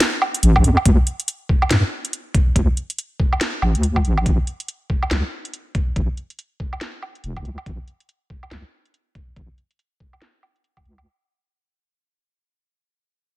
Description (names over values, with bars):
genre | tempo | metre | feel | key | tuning
deep dubstep | 141 BPM | 4/4 | swing 60% on 16ths, half-time | unclear | A4 = 441 Hz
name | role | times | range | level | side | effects
garage drum kit | drums | 0.0-11.1 s | hi-hat, snare drum, woodblock | -22 LUFS | right 1 dB | low-pass filter on hats, low-pass filter on perc, low-pass filter on snare, low-pass filter on cymbals
wobble bass | bass | 0.4-11.1 s | E1 to G2 | -17 LUFS | equal | chorus
electronic kick drum | drums | 0.6-10.8 s | none | -19 LUFS | equal | none
room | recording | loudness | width
little or no reverb | none | -18 LUFS | side -18 dB against mid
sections
0.0-11.1 A section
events
fade-out 0.0-11.1; filter sweep on wobble bass 0.0-11.1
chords
none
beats
0.00 0.43 | 0.85 1.28 1.71 2.13 | 2.56 2.98 3.41 3.83 | 4.26 4.68 5.11 5.54 | 5.96 6.39 6.81 7.24 | 7.66 8.09 8.51 8.94 | 9.36 9.79 10.21 10.64